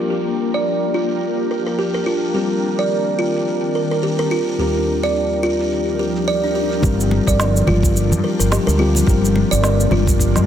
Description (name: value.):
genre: organic downtempo.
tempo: 107 BPM.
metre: 4/4.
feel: swing 57% on 16ths.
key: G minor.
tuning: A4 = 439 Hz.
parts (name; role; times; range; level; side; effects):
muted felt-like synth keys; accompaniment; 0.0-10.5 s; Eb2 to Bb4; -25 LUFS; left 3 dB; chorus, sidechain pumping, tape echo.
ethereal airy pad; sustained chords; 0.0-10.5 s; Eb3 to Bb4; -22 LUFS; left 2 dB; ensemble chorus, built-in reverb, phaser, sidechain pumping.
electronic shaker and snare drum; drums; 0.0-10.5 s; none; -24 LUFS; right 1 dB; low-pass filter on perc, low-pass filter on snare, low-pass filter on room.
bronze singing bowl; texture; 0.0-6.9 s; Bb3 to Bb4; -35 LUFS; right 2 dB; none.
buzzing kalimba; arpeggios; 0.1-10.0 s; D4 to D5; -20 LUFS; right 2 dB; low-pass filter, tape echo.
fretless electric bass; bass; 6.8-10.4 s; G1 to G2; -18 LUFS; equal; tube saturation, wide subtle chorus.
electronic kick drum; drums; 6.8-10.3 s; none; -18 LUFS; equal; none.
congas; percussion; 6.8-10.0 s; none; -24 LUFS; left 1 dB; none.
room: moderate echo chamber reverb, RT60 2.4 s.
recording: dense, heavily limited modern master.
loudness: -15 LUFS.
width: side -10 dB against mid.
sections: 0.0-6.8 A section; 6.8-10.5 B section.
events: none.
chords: 0.0 Gm7; 2.4 Ebmaj9; 6.8 Gm7.